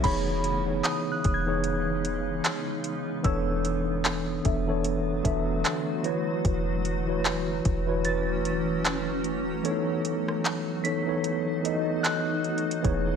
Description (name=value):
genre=contemporary R&B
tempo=75 BPM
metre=4/4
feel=swing 58% on 16ths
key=unclear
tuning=A4 = 439 Hz
part: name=mellow tine electric piano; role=accompaniment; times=0.0-13.2 s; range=E3 to E5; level=-28 LUFS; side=equal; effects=medium stereo tremolo
part: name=granular cloud pad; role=sustained chords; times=0.0-13.2 s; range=C#3 to F#4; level=-34 LUFS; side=equal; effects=built-in reverb
part: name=clean 808-style bass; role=bass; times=0.0-13.2 s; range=E1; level=-32 LUFS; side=equal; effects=none
part: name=smooth R&B drum kit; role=drums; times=0.0-13.1 s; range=crash cymbal, handclaps, hi-hat, kick drum, rim click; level=-29 LUFS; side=equal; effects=overdrive, vintage 12-bit sampler grit
part: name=glassy synth bell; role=texture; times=0.0-13.2 s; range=B5 to B6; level=-34 LUFS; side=right 1 dB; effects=chorus, tremolo, digital delay
room=light reverb, digital ambience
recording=none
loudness=-25 LUFS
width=side -7 dB against mid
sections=0.0-13.2 A section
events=kick muted 9.6-12.8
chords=0.0 C#m9/E; 3.2 Bm7/E; 6.0 A6/E; 9.6 B7/E